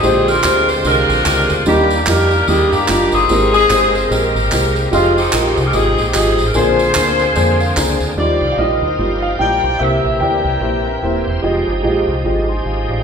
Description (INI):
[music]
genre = uptempo gospel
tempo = 147 BPM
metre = 4/4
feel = swing 59% on 8ths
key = Eb major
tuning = A4 = 440 Hz
[part]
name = clear saxophone section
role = melody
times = 0.0-11.3 s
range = Ab3 to G5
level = -16 LUFS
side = left 2 dB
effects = none
[part]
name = dark upright piano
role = accompaniment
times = 0.0-13.0 s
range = Ab2 to C6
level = -18 LUFS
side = equal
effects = none
[part]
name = bright tonewheel organ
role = sustained chords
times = 0.0-13.0 s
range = D3 to G5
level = -23 LUFS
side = right 2 dB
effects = slow rotary speaker, overdrive, chorus vibrato
[part]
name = deep dub fingered electric bass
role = bass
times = 0.0-13.0 s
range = Eb1 to G2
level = -20 LUFS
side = equal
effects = none
[part]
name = tambourine and handclaps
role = percussion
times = 0.0-8.1 s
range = none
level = -23 LUFS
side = right 2 dB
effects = none
[part]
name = warm concert grand piano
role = melody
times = 8.2-11.2 s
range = D5 to G5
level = -20 LUFS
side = equal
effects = none
[part]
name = dark French horn section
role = sustained chords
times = 8.2-13.0 s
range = G3 to G4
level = -29 LUFS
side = right 4 dB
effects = none
[sound]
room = wet recital hall reverb, RT60 1.4 s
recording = recorded in a church or concert hall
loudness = -12 LUFS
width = side -6 dB against mid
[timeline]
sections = 0.0-8.2 A section; 8.2-13.0 B section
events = upright piano fill 7.4-8.2, 10.6-11.4; tonewheel organ fill 10.6-11.4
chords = 0.0 Bb13; 1.7 Ebmaj7; 3.3 Abmaj9; 4.9 Fm9; 6.5 Bb9; 8.2 Ebmaj9; 9.8 C7; 11.4 Fm9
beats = | 0.04 0.45 0.85 1.26 | 1.67 2.08 2.48 2.89 | 3.30 3.70 4.11 4.52 | 4.92 5.33 5.74 6.14 | 6.55 6.96 7.36 7.77 | 8.18 8.58 8.99 9.40 | 9.80 10.21 10.62 11.03 | 11.43 11.84 12.25 12.65